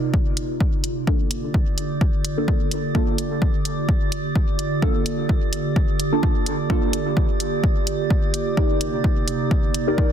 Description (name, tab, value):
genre	dub techno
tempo	128 BPM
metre	4/4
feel	swing 54% on 16ths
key	G minor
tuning	A4 = 440 Hz
part	warbly tape-like pad	sustained chords	0.0-10.1 s	C3 to G4	-26 LUFS	right 2 dB	chorus, built-in reverb, sidechain pumping
part	electronic kick drum	drums	0.1-10.1 s	none	-21 LUFS	equal	overdrive
part	electronic hi-hat	drums	0.4-9.8 s	none	-29 LUFS	equal	overdrive
part	deep mellow chord stab	stabs	1.1-10.1 s	Bb3 to D5	-27 LUFS	equal	chorus, phaser, sidechain pumping, dub echo
part	metallic inharmonic drone	texture	1.4-10.1 s	D5	-31 LUFS	right 4 dB	chorus, built-in reverb, sidechain pumping
room	light reverb, digital ambience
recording	dense, heavily limited modern master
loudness	-19 LUFS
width	side -9 dB against mid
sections	0.0-10.1 A section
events	none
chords	0.0 Cm7; 1.1 Gm7; 8.6 Cm7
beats	0.14 0.60 | 1.07 1.54 2.01 2.48 | 2.95 3.42 3.89 4.36 | 4.82 5.29 5.76 6.23 | 6.70 7.17 7.64 8.11 | 8.57 9.04 9.51 9.98